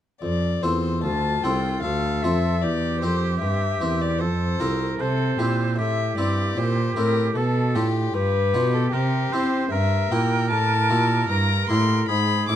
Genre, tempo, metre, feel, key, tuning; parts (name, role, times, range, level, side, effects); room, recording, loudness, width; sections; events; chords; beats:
classical, baroque-style sonata movement with continuo; 76 BPM; 3/4; straight; F major; A4 = 440 Hz
warm violin; melody; 0.2-12.6 s; G4 to D6; -26 LUFS; left 6 dB
harpsichord; accompaniment; 0.2-12.6 s; C2 to Bb4; -27 LUFS; left 1 dB
rich cello; bass; 0.2-12.6 s; C2 to C4; -24 LUFS; right 2 dB
warm oboe; second line; 1.0-12.6 s; F4 to C5; -29 LUFS; right 6 dB
light reverb; dark, warm production; -20 LUFS; side -10 dB against mid
0.2-12.6 A section
0.2 F; 2.6 C7/E; 4.2 F; 5.0 C; 7.4 G7; 8.9 C; 9.7 Edim/G
| 0.22 1.03 1.84 | 2.63 3.43 4.21 | 5.00 5.79 6.58 | 7.36 8.14 8.93 | 9.72 10.51 11.30 | 12.10